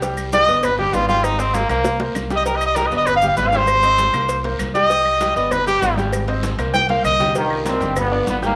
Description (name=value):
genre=latin, salsa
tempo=196 BPM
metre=4/4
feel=straight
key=C minor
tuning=A4 = 440 Hz
part: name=bright upright piano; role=accompaniment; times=0.0-8.6 s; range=G3 to G6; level=-28 LUFS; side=equal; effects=none
part: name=upright bass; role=bass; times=0.0-8.6 s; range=G1 to C2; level=-28 LUFS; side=equal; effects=none
part: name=congas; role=percussion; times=0.0-8.6 s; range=none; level=-32 LUFS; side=equal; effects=none
part: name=cowbell and bongos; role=percussion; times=0.0-8.4 s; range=none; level=-31 LUFS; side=equal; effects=none
part: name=guiro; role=percussion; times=0.0-8.6 s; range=none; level=-41 LUFS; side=equal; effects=none
part: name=maracas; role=percussion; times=0.0-8.6 s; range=none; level=-41 LUFS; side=equal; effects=none
part: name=claves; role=percussion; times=0.2-8.1 s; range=none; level=-36 LUFS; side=equal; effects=none
part: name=clear trumpet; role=melody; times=0.3-7.3 s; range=Bb3 to G5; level=-19 LUFS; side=equal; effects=none
part: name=mellow trombone section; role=melody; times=7.4-8.6 s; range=G2 to C4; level=-22 LUFS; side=equal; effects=none
room=moderate echo chamber reverb, RT60 1.3 s, studio reverb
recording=none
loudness=-18 LUFS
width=mono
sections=0.0-7.4 A section; 7.4-8.6 B section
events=trumpet solo 0.0-7.4; drum fill 1.9-2.5, 6.7-7.4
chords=0.0 Cm; 0.6 G; 1.2 Abmaj7; 1.9 C5; 3.1 G; 3.7 Abmaj7; 4.3 Cm7; 5.5 G; 6.1 Abmaj7; 6.7 Cm7; 8.0 G7